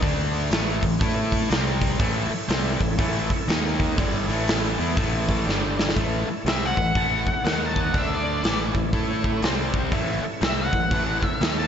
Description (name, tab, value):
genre	blues rock power trio and southern rock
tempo	121 BPM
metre	4/4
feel	swing 63% on 8ths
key	unclear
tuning	A4 = 441 Hz
part	sludgy distorted guitar	riff	0.0-11.7 s	G2 to A4	-26 LUFS	left 1 dB	overdrive, slapback echo
part	growling fingered electric bass	bass	0.0-11.7 s	G1 to A2	-28 LUFS	equal	overdrive
part	big rock drum kit	drums	0.0-11.6 s	hi-hat, kick drum, snare drum	-25 LUFS	equal	none
part	overdriven tonewheel organ	sustained chords	2.0-11.7 s	C4 to A5	-34 LUFS	right 2 dB	chorus vibrato, slow rotary speaker
part	octave-fuzz lead guitar	melody	6.5-11.7 s	D5 to A5	-26 LUFS	left 2 dB	distortion, slapback echo
room	moderate concert hall reverb, RT60 2.2 s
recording	big arena sound, nothing above 7.8 kHz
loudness	-21 LUFS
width	side -8 dB against mid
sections	0.0-6.0 A section; 6.0-11.7 B section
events	tonewheel organ fill 5.0-6.0, 9.2-9.9; drum fill 5.5-6.0; lead electric guitar solo 6.0-11.7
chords	0.0 D5; 0.5 A5; 1.5 C5; 2.0 A; 3.5 D#5; 4.0 A; 5.5 G5; 6.0 A; 7.4 D#5; 7.9 D5; 8.4 A; 9.4 C5; 9.9 A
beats	| 0.03 0.52 1.02 1.51 | 2.01 2.50 3.00 3.49 | 3.98 4.48 4.97 5.47 | 5.96 6.46 6.95 7.45 | 7.94 8.44 8.94 9.43 | 9.93 10.42 10.92 11.41